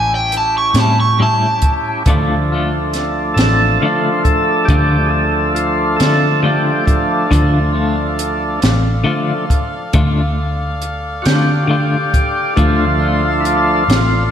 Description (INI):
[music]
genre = slow blues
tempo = 46 BPM (dotted quarters)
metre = 12/8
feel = straight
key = D harmonic minor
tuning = A4 = 440 Hz
[part]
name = overdriven semi-hollow guitar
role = melody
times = 0.0-2.1 s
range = G5 to C#6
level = -16 LUFS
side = right 1 dB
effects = slapback echo
[part]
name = overdriven tonewheel organ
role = sustained chords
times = 0.0-14.3 s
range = F3 to A4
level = -17 LUFS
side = equal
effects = slow rotary speaker
[part]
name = vintage muted picked electric bass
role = bass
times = 0.0-14.3 s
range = A1 to D3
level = -18 LUFS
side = equal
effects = none
[part]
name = compact cocktail drum kit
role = drums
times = 0.3-14.1 s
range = hi-hat, kick drum, snare drum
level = -17 LUFS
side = equal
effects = none
[part]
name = clean electric guitar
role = accompaniment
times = 0.8-13.3 s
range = A2 to F4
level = -21 LUFS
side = left 3 dB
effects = tremolo, slapback echo
[part]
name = warm saxophone section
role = sustained chords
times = 2.1-14.3 s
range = A4 to F5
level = -25 LUFS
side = left 1 dB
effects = none
[sound]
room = wet concert hall reverb, RT60 2.1 s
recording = big arena sound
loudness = -12 LUFS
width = side -9 dB against mid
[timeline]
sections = 0.0-2.1 A section; 2.1-14.3 B section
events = tonewheel organ solo 2.1-14.3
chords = 0.0 A7; 2.1 Dm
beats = 0.75 | 2.06 3.37 4.69 6.00 | 7.31 8.62 9.94 11.25 | 12.57 13.88